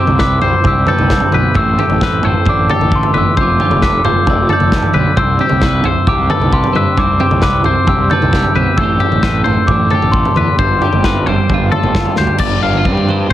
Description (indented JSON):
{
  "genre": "math rock and midwest emo",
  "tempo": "133 BPM",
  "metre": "4/4",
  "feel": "straight",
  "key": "C major",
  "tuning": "A4 = 440 Hz",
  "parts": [
    { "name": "glockenspiel with rubber mallets", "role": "melody", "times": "0.0-11.9 s", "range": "C6 to G6", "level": "-17 LUFS", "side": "left 1 dB", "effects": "none" },
    { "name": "twelve-string electric guitar", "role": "accompaniment", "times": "0.0-13.3 s", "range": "G2 to D5", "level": "-20 LUFS", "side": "right 6 dB", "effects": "spring reverb" },
    { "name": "twangy electric guitar", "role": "arpeggios", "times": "0.0-13.3 s", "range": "G4 to F5", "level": "-19 LUFS", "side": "left 6 dB", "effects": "none" },
    { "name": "fuzz fingered electric bass", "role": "bass", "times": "0.1-13.3 s", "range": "F1 to G2", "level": "-17 LUFS", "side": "equal", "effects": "overdrive" },
    { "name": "modern studio drum kit", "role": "drums", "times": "0.1-13.3 s", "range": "crash cymbal, kick drum, snare drum, toms", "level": "-15 LUFS", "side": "equal", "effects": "none" }
  ],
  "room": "little or no reverb",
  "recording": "heavily compressed radio sound, multiband compression",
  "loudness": "-10 LUFS",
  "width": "side -13 dB against mid",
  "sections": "0.0-12.4 A section",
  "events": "drum fill 12.2",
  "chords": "0.0 Cmaj9; 1.6 Am11; 3.4 F69; 5.2 Cmaj9; 8.8 Am11; 10.6 G9sus4; 12.4 G7sus4",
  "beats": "0.21 0.66 1.11 | 1.56 2.01 2.46 2.92 | 3.37 3.82 4.27 4.72 | 5.17 5.63 6.08 6.53 | 6.98 7.43 7.88 8.34 | 8.79 9.24 9.69 10.14 | 10.59 11.04 11.50 11.95 | 12.40 12.85 13.31"
}